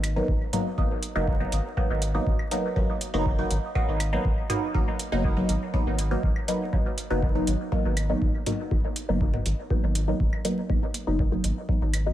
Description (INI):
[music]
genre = dub techno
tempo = 121 BPM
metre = 4/4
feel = straight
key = G# minor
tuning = A4 = 439 Hz
[part]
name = soft dub sub bass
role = bass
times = 0.0-12.1 s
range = F#1 to G#1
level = -28 LUFS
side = equal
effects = sidechain pumping
[part]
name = electronic hi-hat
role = drums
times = 0.0-12.0 s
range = none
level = -33 LUFS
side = right 2 dB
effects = none
[part]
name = electronic claves and toms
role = percussion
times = 0.0-12.0 s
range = none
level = -35 LUFS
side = equal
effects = overdrive, sidechain pumping on perc, sidechain pumping on toms
[part]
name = filtered dub chord stab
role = stabs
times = 0.2-12.1 s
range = F#3 to D#4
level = -28 LUFS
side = equal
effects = phaser, sidechain pumping, dub echo
[part]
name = electronic kick drum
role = drums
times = 0.3-11.8 s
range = none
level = -27 LUFS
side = equal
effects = none
[sound]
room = light reverb, digital ambience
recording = vinyl crackle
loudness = -23 LUFS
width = side -12 dB against mid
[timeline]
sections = 0.0-12.1 A section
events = none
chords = 0.0 G#m7